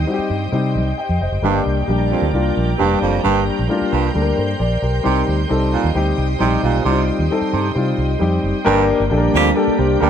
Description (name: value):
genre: soul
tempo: 133 BPM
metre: 4/4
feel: straight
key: G minor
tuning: A4 = 443 Hz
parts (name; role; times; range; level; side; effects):
- soft additive organ-like pad; sustained chords; 0.0-10.1 s; G3 to G5; -24 LUFS; equal; ensemble chorus, built-in reverb
- vintage muted fingered electric bass; bass; 0.0-10.1 s; F1 to C3; -20 LUFS; right 1 dB; none
- dark upright piano; accompaniment; 0.1-10.1 s; G3 to G5; -19 LUFS; left 3 dB; none
- warm baritone saxophone; riff; 1.4-10.1 s; F2 to C3; -21 LUFS; right 9 dB; none
- bright saxophone section; second line; 9.3-9.5 s; D3 to G4; -20 LUFS; right 3 dB; none
room: light reverb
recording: none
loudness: -15 LUFS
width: side -8 dB against mid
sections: 0.0-8.7 A section; 8.7-10.1 B section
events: none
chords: 0.0 Cm; 1.4 Gm; 5.0 Cm; 8.7 Gm